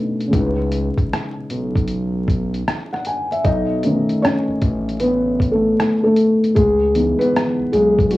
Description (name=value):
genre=lo-fi hip hop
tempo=77 BPM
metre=4/4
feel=swing 64% on 16ths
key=unclear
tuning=A4 = 440 Hz
part: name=felt-muted upright piano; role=accompaniment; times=0.0-8.2 s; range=B2 to G#5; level=-17 LUFS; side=equal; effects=cassette tape
part: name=lo-fi sampler-style drum kit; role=drums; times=0.2-8.2 s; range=hi-hat, kick drum, rim click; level=-21 LUFS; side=equal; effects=none
part: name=smooth gliding synth bass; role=bass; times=0.3-8.2 s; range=A1 to C#2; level=-23 LUFS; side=equal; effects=tube saturation
room=moderate studio reverb, RT60 0.6 s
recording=worn, warbling old tape, cassette tape, vinyl crackle, warbly pitch drift, small room ambience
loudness=-16 LUFS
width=side -17 dB against mid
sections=0.0-3.4 A section; 3.4-8.2 A section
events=felt piano solo 3.4-8.2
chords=0.3 C#m7; 3.4 B7; 6.6 C#m7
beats=| 0.33 1.11 1.89 2.67 | 3.45 4.23 5.01 5.79 | 6.57 7.34 8.12